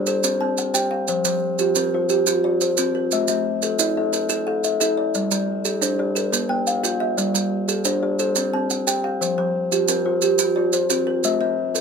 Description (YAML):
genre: southern african traditional, mbira-style interlocking cycle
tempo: 118 BPM (dotted quarters)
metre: 12/8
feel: straight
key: unclear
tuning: A4 = 440 Hz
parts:
  - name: kalimba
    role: arpeggios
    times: 0.0-11.8 s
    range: F3+29c to G5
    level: -22 LUFS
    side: left 4 dB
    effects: none
  - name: kalimba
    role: arpeggios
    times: 0.0-11.8 s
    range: F3+29c to A5-29c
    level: -24 LUFS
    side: right 5 dB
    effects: none
  - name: maracas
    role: percussion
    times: 0.1-11.8 s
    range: none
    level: -23 LUFS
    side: right 8 dB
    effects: none
room: light reverb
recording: none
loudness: -19 LUFS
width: side -5 dB against mid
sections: 0.0-11.8 A section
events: none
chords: 0.1 C5; 1.1 F5; 3.1 A5; 5.1 G5; 6.2 Bb; 7.2 G5; 8.2 C5; 9.2 F5; 11.2 Am